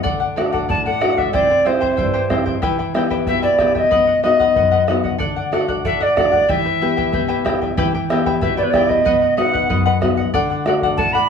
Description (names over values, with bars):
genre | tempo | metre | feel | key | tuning
andean folk, Andean ensemble | 93 BPM | 2/4 | straight | E minor | A4 = 440 Hz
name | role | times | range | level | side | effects
charango | accompaniment | 0.0-11.3 s | E4 to G5 | -22 LUFS | left 5 dB | none
nylon-string guitar | accompaniment | 0.0-11.3 s | F#2 to G4 | -21 LUFS | left 1 dB | none
bombo | percussion | 0.1-11.1 s | none | -23 LUFS | right 1 dB | none
alto recorder | melody | 0.7-11.3 s | B4 to B5 | -16 LUFS | equal | plate reverb
room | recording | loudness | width
moderate studio reverb, RT60 0.6 s | small room ambience | -15 LUFS | side -6 dB against mid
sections
0.0-7.8 A section; 7.8-11.3 A section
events
none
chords
0.0 D; 1.3 C; 2.6 Em; 3.9 B; 5.2 D; 6.5 Em; 9.1 B; 10.3 D